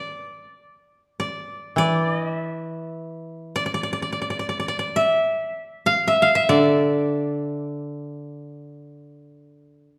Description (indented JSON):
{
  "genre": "japanese traditional, Japanese chamber music",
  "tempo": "free time",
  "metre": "none",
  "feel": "none",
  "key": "unclear",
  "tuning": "A4 = 438 Hz",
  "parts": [
    { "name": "koto", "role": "melody", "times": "0.0-8.9 s", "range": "D5 to F5", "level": "-24 LUFS", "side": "equal", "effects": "none" },
    { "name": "koto", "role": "accompaniment", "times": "1.8-9.9 s", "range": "D3 to E3", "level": "-26 LUFS", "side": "equal", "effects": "none" }
  ],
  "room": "wet recital hall reverb, RT60 1.4 s",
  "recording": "recorded in a church or concert hall",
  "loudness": "-23 LUFS",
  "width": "mono",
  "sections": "0.0-10.0 A section",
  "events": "none",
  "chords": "none"
}